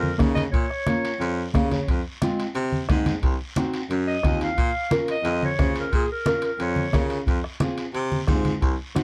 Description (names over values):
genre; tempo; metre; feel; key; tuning
latin, cumbia; 178 BPM; 4/4; straight; Bb minor; A4 = 440 Hz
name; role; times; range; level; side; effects
clear clarinet; melody; 0.0-1.5, 4.1-7.1 s; Ab4 to F5; -30 LUFS; equal; none
bright baritone saxophone; bass; 0.0-8.8 s; C2 to Db3; -28 LUFS; equal; none
congas; percussion; 0.0-9.0 s; none; -30 LUFS; equal; none
nylon-string guitar; accompaniment; 0.2-9.0 s; Ab3 to F5; -29 LUFS; equal; none
bombo; percussion; 0.2-9.0 s; none; -26 LUFS; equal; none
guiro; percussion; 0.2-9.0 s; none; -44 LUFS; equal; none
timbales; percussion; 0.2-9.0 s; none; -40 LUFS; equal; none
room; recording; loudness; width
light reverb; dark, warm production; -24 LUFS; mono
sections
0.0-9.0 A section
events
nylon-string guitar fill 1.4-1.9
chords
0.0 Bbm; 1.9 Fm; 3.2 Cdim; 4.6 Bbm; 7.3 Fm